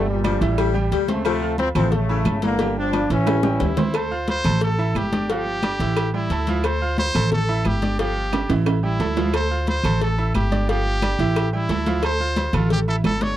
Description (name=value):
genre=latin, salsa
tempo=178 BPM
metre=4/4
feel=straight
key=unclear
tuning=A4 = 443 Hz
part: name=brilliant trombone section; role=melody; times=0.0-3.7 s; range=Bb2 to D4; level=-24 LUFS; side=left 1 dB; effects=none
part: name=bright baby grand piano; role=accompaniment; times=0.0-13.4 s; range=E3 to F6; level=-28 LUFS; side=right 6 dB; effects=none
part: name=upright bass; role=bass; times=0.0-13.4 s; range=G1 to D2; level=-23 LUFS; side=equal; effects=none
part: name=congas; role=percussion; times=0.1-13.4 s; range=none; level=-27 LUFS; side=left 2 dB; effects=none
part: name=warm baritone saxophone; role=second line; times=0.2-3.8 s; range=C#3 to G3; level=-26 LUFS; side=left 16 dB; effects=none
part: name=agogo bells and timbales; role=percussion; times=0.2-13.2 s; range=none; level=-30 LUFS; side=right 6 dB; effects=none
part: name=claves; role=percussion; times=0.2-13.2 s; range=none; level=-36 LUFS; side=right 16 dB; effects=none
part: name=cowbell and bongos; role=percussion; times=0.2-13.4 s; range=none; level=-30 LUFS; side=left 5 dB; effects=none
part: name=bright trumpet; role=melody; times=3.5-13.4 s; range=E4 to C#5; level=-26 LUFS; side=equal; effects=none
room=little or no reverb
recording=dry, close 1970s-style studio recording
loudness=-18 LUFS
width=side -12 dB against mid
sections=0.0-3.9 A section; 3.9-13.4 B section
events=drum fill 3.3-3.9, 8.3-9.3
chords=0.0 Gm7; 0.6 A7; 1.3 Dm7; 1.9 A7; 2.6 G5; 3.3 A7; 3.9 Dm7; 4.6 A5; 5.3 G5; 6.0 A5; 6.6 Dm7; 7.3 A5; 8.0 G5; 8.7 A5; 9.3 Dm7; 10.0 A5; 10.7 G5; 11.4 A5; 12.0 Dm7; 12.7 A5